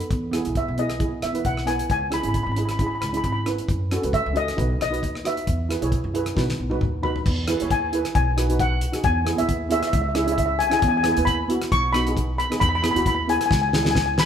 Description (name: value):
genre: calypso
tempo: 134 BPM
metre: 4/4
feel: swing 53% on 16ths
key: E major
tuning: A4 = 442 Hz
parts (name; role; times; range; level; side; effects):
- steel pan; accompaniment; 0.0-14.1 s; B3 to C#5; -26 LUFS; right 3 dB; none
- damped 70s drum kit; drums; 0.0-14.3 s; crash cymbal, hi-hat, kick drum, rim click, snare drum, toms; -27 LUFS; left 1 dB; none
- upright bass; bass; 0.1-14.2 s; G#1 to F#2; -26 LUFS; equal; none
- steel pan; melody; 0.6-14.3 s; D#5 to C#6; -24 LUFS; left 3 dB; none
room: wet large studio reverb, RT60 1.4 s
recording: band playing live in one room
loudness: -20 LUFS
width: side -8 dB against mid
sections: 0.0-7.3 A section; 7.3-14.3 B section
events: drum fill 6.4-7.3, 13.5-14.3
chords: 0.1 E; 1.9 C#m7; 3.7 F#m; 4.6 B; 5.5 Eadd9; 6.4 B; 7.3 Emaj7; 8.2 B6; 9.0 Emaj7; 9.9 C#m; 10.8 Emaj7; 11.7 B6; 12.6 Emaj7; 13.5 C#m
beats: | 0.10 0.55 1.00 1.45 | 1.90 2.35 2.79 3.24 | 3.69 4.13 4.58 5.03 | 5.48 5.92 6.37 6.82 | 7.26 7.71 8.16 8.60 | 9.05 9.49 9.94 10.39 | 10.83 11.28 11.72 12.17 | 12.62 13.06 13.51 13.95